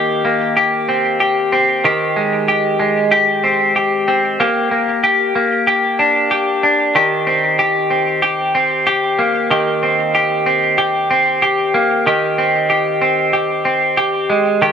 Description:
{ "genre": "dream pop", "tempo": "94 BPM", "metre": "4/4", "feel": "straight", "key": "Eb major", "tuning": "A4 = 440 Hz", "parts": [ { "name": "semi-hollow electric guitar", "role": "solo", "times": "0.0-14.7 s", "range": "Eb3 to G4", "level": "-13 LUFS", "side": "equal", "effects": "wide subtle chorus, digital delay" } ], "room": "moderate plate reverb, RT60 3.7 s", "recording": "none", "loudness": "-13 LUFS", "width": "side -7 dB against mid", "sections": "0.0-7.0 A section; 7.0-14.7 B section", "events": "none", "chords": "0.0 Eb6; 1.8 Abmaj7; 4.4 Bb6; 7.0 Eb6; 12.1 Abmaj7" }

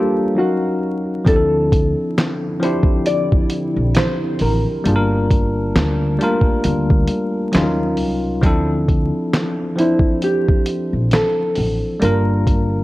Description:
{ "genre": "lo-fi hip hop", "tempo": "67 BPM", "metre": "4/4", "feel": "swing 56% on 16ths", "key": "D minor", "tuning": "A4 = 439 Hz", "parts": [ { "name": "hollow-body jazz guitar", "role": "melody", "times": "0.0-12.8 s", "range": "E4 to D5", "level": "-21 LUFS", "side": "equal", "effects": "low-pass filter, analog delay" }, { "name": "bell-like tine electric piano", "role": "accompaniment", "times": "0.0-12.8 s", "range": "F3 to F5", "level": "-20 LUFS", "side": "left 1 dB", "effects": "fast stereo tremolo, cassette tape, low-pass filter" }, { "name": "warbly tape-like pad", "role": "sustained chords", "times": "2.1-8.4 s", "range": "D3 to A5", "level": "-30 LUFS", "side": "right 2 dB", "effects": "none" }, { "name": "upright bass", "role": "bass", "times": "1.3-12.8 s", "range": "G1 to Eb2", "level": "-20 LUFS", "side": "equal", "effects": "none" }, { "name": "lo-fi sampler-style drum kit", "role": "drums", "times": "1.3-12.7 s", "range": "handclaps, hi-hat, kick drum, snare drum", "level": "-18 LUFS", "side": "equal", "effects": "none" } ], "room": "light reverb", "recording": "worn, warbling old tape, cassette tape, vinyl crackle, warbly pitch drift", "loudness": "-15 LUFS", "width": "side -18 dB against mid", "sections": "0.0-12.8 A section", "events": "break 0.0-1.3", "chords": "0.4 Ebm9; 1.3 Dm9; 4.8 Gm9; 7.5 Ebm9; 8.4 Dm9; 12.0 Gm7" }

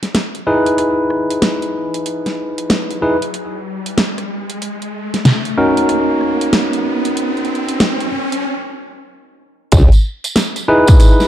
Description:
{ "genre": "glitch hop", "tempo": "94 BPM", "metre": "4/4", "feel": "swing 63% on 16ths", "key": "unclear", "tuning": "A4 = 440 Hz", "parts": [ { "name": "dubstep drum kit", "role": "drums", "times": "0.0-11.3 s", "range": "hi-hat, rim click, snare drum", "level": "-17 LUFS", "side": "equal", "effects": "none" }, { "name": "riser", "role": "sound effects", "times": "0.3-8.4 s", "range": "none", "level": "-24 LUFS", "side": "equal", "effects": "none" }, { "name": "bright tine electric piano", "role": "stabs", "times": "0.5-11.3 s", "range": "C#4 to B4", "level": "-16 LUFS", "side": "equal", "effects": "sidechain pumping, tape echo" }, { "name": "formant-sweep wobble bass", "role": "bass", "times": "9.7-9.9 s", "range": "C#2", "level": "-10 LUFS", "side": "equal", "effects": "chorus" }, { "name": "electronic kick drum", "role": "drums", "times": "9.7-11.0 s", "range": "none", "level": "-8 LUFS", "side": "equal", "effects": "none" }, { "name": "tambourine", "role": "percussion", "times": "9.7-11.3 s", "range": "none", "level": "-25 LUFS", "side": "right 4 dB", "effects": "none" } ], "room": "moderate plate reverb, RT60 1.9 s, digital ambience", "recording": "dark, warm production", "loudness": "-13 LUFS", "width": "side -12 dB against mid", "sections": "0.0-9.7 A section; 9.7-11.3 B section", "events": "build-up 0.0-9.7; riser 0.3-8.4; break 8.4-9.7; drop 9.7-11.3", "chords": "0.0 Emaj7/D#; 4.6 F#6/C#; 9.7 C#m7 (rootless)" }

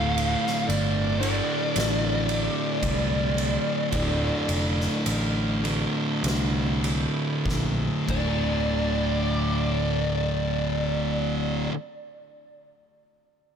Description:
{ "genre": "stoner and doom metal", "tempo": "46-57 BPM", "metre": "4/4", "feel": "straight", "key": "unclear", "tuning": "A4 = 441 Hz", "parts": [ { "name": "fuzz lead guitar", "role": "melody", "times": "0.0-11.7 s", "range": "D5 to F5", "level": "-30 LUFS", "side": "right 1 dB", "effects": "wah, distortion, tape echo" }, { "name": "thick fuzz guitar", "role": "riff", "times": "0.0-11.7 s", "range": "D2 to D3", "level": "-26 LUFS", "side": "equal", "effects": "distortion" }, { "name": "picked electric bass", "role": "bass", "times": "0.0-11.7 s", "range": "D1 to C2", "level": "-28 LUFS", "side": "equal", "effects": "overdrive" }, { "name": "oversized low-tuned drum kit", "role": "drums", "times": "0.2-8.4 s", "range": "crash cymbal, kick drum, ride cymbal, snare drum", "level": "-32 LUFS", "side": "equal", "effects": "none" } ], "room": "studio reverb", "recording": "none", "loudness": "-23 LUFS", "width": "side -8 dB against mid", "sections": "0.0-8.7 A section; 8.7-13.6 B section", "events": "slowing down 0.0-8.7; drum fill 7.5-8.7", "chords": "0.0 D5" }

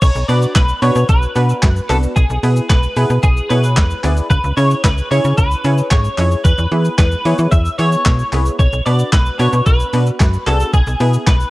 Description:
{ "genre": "dance-pop", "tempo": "112 BPM", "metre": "4/4", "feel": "straight", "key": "B dorian", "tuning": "A4 = 440 Hz", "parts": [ { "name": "twelve-string electric guitar", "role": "melody", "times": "0.0-11.5 s", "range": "G#4 to E5", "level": "-20 LUFS", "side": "equal", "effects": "ensemble chorus" }, { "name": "slap-like FM bass", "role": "bass", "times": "0.0-11.4 s", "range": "B1 to E3", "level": "-15 LUFS", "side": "equal", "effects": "sidechain pumping" }, { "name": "crisp 8-bit digital drum machine", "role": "drums", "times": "0.0-11.5 s", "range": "crash cymbal, handclaps, hi-hat, kick drum, shaker, snare drum", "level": "-15 LUFS", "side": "equal", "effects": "overdrive" }, { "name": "analog pluck", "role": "accompaniment", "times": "0.3-11.4 s", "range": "B3 to D5", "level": "-22 LUFS", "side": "equal", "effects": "chorus, sidechain pumping" } ], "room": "little or no reverb", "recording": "worn, warbling old tape, cassette tape, warbly pitch drift", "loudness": "-12 LUFS", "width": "side -19 dB against mid", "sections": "0.0-11.5 A section", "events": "none", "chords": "0.0 Bm; 2.2 E/B; 4.3 C#m; 6.5 E; 8.6 Bm; 10.7 E/B" }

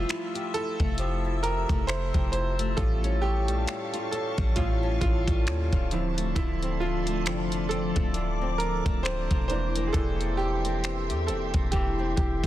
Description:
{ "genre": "contemporary R&B", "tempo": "67 BPM", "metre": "4/4", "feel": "swing 58% on 16ths", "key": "F major", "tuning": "A4 = 440 Hz", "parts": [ { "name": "warm grand piano", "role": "accompaniment", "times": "0.0-12.5 s", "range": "E3 to C5", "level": "-31 LUFS", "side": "right 4 dB", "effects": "none" }, { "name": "glassy FM pad", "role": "sustained chords", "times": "0.0-12.5 s", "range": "F3 to E6", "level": "-35 LUFS", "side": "left 2 dB", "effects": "ensemble chorus, built-in reverb, sidechain pumping" }, { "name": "flamenco guitar", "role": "arpeggios", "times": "0.0-12.5 s", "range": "A2 to G4", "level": "-34 LUFS", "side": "left 4 dB", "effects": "digital delay" }, { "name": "warm 808-style bass", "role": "bass", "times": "0.0-12.5 s", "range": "D1 to E2", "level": "-29 LUFS", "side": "equal", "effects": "none" }, { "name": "smooth R&B drum kit", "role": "drums", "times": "0.1-12.5 s", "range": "finger snaps, hi-hat, kick drum", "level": "-28 LUFS", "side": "equal", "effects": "vintage 12-bit sampler grit, soft clipping on snare" } ], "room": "little or no reverb", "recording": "dense, heavily limited modern master", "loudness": "-25 LUFS", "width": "side -14 dB against mid", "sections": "0.0-12.5 A section", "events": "grand piano solo 0.0-12.5", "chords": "0.0 Fmaj9; 2.8 Aaug7; 5.9 Dm7; 9.5 C7/E" }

